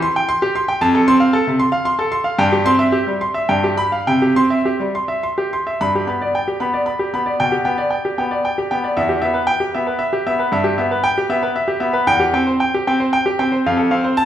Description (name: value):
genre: classical, baroque-style suite movement for grand piano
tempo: 102-118 BPM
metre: 3/4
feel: rubato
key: C major, G major from 5.8 s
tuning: A4 = 440 Hz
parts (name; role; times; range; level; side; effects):
- bright grand piano; solo; 0.0-14.3 s; E2 to C6; -15 LUFS; equal; none
room: wet recital hall reverb, RT60 1.4 s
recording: recorded in a church or concert hall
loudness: -15 LUFS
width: side -11 dB against mid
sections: 0.0-5.8 A section; 5.8-14.3 A section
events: none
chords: 0.0 C5; 0.8 F; 2.4 C/G; 3.5 G7; 4.1 C; 5.8 G; 7.4 G/B; 9.0 Em; 10.5 Em/G; 12.1 C/E; 13.7 F